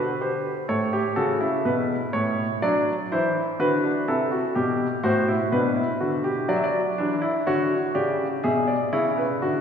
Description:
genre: classical, baroque-style 3-part fugue for grand piano.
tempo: 62 BPM.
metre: 4/4.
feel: straight.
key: G major.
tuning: A4 = 440 Hz.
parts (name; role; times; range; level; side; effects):
warm baby grand piano; solo; 0.0-9.6 s; A2 to E5; -21 LUFS; equal; none.
room: wet church reverb, RT60 3.0 s.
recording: recorded in a church or concert hall, small room reverb.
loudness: -21 LUFS.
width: side -7 dB against mid.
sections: 0.0-9.6 A section.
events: none.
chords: 0.0 G5; 0.7 A; 2.6 D7; 4.6 G; 6.5 D; 8.4 E7/B.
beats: 0.68 1.64 | 2.61 3.59 4.55 5.52 | 6.50 7.47 8.44 9.42.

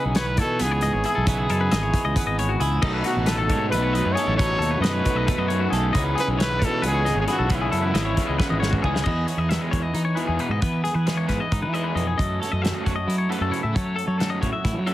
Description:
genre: math rock and midwest emo.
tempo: 270 BPM (eighths).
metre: 7/8.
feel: straight.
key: E major.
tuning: A4 = 440 Hz.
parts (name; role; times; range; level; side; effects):
breathy trumpet; melody; 0.0-8.6 s; E4 to C#5; -26 LUFS; equal; none.
twelve-string electric guitar; accompaniment; 0.0-14.9 s; E2 to A4; -29 LUFS; right 4 dB; none.
twangy electric guitar; arpeggios; 0.0-14.9 s; F#4 to E5; -28 LUFS; left 5 dB; tape echo.
fuzz fingered electric bass; bass; 0.1-14.9 s; G#1 to F#3; -25 LUFS; equal; overdrive.
loose indie drum kit; drums; 0.1-14.9 s; crash cymbal, hi-hat, kick drum, snare drum, toms; -26 LUFS; equal; none.
raw garage guitar; riff; 2.8-14.9 s; B2 to F#4; -29 LUFS; equal; overdrive.
room: light reverb.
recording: heavily compressed radio sound, multiband compression.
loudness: -20 LUFS.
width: side -14 dB against mid.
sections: 0.0-9.1 A section; 9.1-14.9 B section.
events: drum fill 8.4-9.1.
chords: 0.0 C#m9; 2.8 B9; 5.9 C#m9; 9.1 Emaj7; 12.2 F#m7.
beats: 0.16 0.38 0.61 0.83 1.05 | 1.27 1.50 1.72 1.94 2.16 2.38 2.61 | 2.83 3.05 3.27 3.50 3.72 3.94 4.16 | 4.39 4.61 4.83 5.05 5.28 5.50 5.72 | 5.95 6.17 6.39 6.61 6.83 7.06 7.28 | 7.50 7.72 7.95 8.17 8.39 8.62 8.84 | 9.06 9.28 9.51 9.73 9.95 10.18 10.40 | 10.62 10.85 11.07 11.29 11.51 11.74 11.96 | 12.18 12.41 12.63 12.85 13.07 13.30 13.52 | 13.74 13.97 14.19 14.41 14.64 14.86.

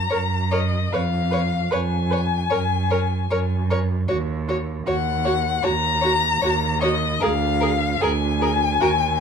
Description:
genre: classical, slow romantic movement for string quartet.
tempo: 76 BPM.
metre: 4/4.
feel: rubato.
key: F# major.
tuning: A4 = 440 Hz.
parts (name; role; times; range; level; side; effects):
rich violin; melody; 0.0-9.2 s; D#5 to A#5; -23 LUFS; left 7 dB; none.
rich violin; second line; 0.1-8.9 s; A#4 to C#5; -29 LUFS; left 3 dB; none.
rich viola; accompaniment; 0.1-8.9 s; F#4 to B4; -26 LUFS; right 2 dB; none.
rich cello; bass; 0.1-9.2 s; D2 to F#2; -23 LUFS; right 3 dB; none.
room: moderate large studio reverb, RT60 1.2 s.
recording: dark, warm production.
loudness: -19 LUFS.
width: side -6 dB against mid.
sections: 0.0-9.2 A section.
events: none.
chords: 0.0 F#; 0.9 C#7/E#; 2.5 F#; 4.1 D#m; 7.2 A#7/D (rootless).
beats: 0.11 | 0.92 1.71 2.51 3.31 | 4.10 4.88 5.64 6.42 | 7.22 8.01 8.81.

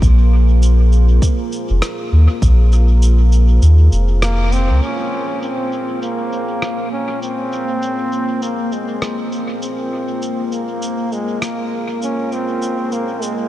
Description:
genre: ambient dub.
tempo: 100 BPM.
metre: 4/4.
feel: swing 59% on 16ths.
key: unclear.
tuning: A4 = 439 Hz.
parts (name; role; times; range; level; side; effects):
deep dark ambient pad; sustained chords; 0.0-13.5 s; Bb3 to C5; -24 LUFS; right 2 dB; chorus, built-in reverb.
soft dub sub bass; bass; 0.0-4.8 s; F1 to Eb2; -10 LUFS; equal; none.
electronic kick drum; drums; 0.0-2.6 s; none; -15 LUFS; equal; none.
electronic shaker and rim click; drums; 0.0-13.4 s; none; -28 LUFS; equal; low-pass filter on perc, low-pass filter on snare, dub echo.
clear trombone; melody; 4.2-13.5 s; Ab3 to Db4; -22 LUFS; equal; dub echo.
bubbling stepped-filter texture; texture; 5.6-13.5 s; Bb3; -28 LUFS; left 2 dB; chorus, built-in reverb.
room: light reverb, digital ambience.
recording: none.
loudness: -14 LUFS.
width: side -14 dB against mid.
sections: 0.0-4.8 A section; 4.8-13.5 B section.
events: kick drops out 3.6-4.8; band accent 4.2.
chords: 0.0 Bb7(no3).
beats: | 0.02 0.62 1.22 1.82 | 2.42 3.02 3.62 4.22 | 4.82 5.42 6.02 6.62 | 7.22 7.82 8.42 9.02 | 9.62 10.22 10.82 11.42 | 12.02 12.62 13.22.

